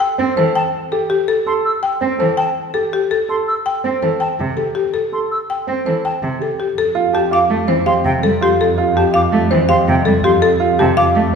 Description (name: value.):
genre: classical, minimalist pattern music.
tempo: 164 BPM.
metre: 5/4.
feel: straight.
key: F major.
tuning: A4 = 440 Hz.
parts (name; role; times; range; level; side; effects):
buzzing marimba with hard mallets; melody; 0.0-11.2 s; G4 to G5; -17 LUFS; left 4 dB; none.
rich cello; accompaniment; 0.2-11.3 s; C3 to C4; -21 LUFS; right 3 dB; none.
warm grand piano; arpeggios; 0.2-11.2 s; C4 to A4; -20 LUFS; right 8 dB; none.
concert flute; arpeggios; 0.6-11.0 s; G5 to E6; -23 LUFS; equal; none.
warm double bass; bass; 6.8-11.3 s; F2; -20 LUFS; equal; none.
room: wet recital hall reverb, RT60 1.7 s.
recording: recorded in a church or concert hall.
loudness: -14 LUFS.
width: side -6 dB against mid.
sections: 0.0-6.8 A section; 6.8-11.3 A section.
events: none.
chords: 0.0 C; 6.8 Fadd9.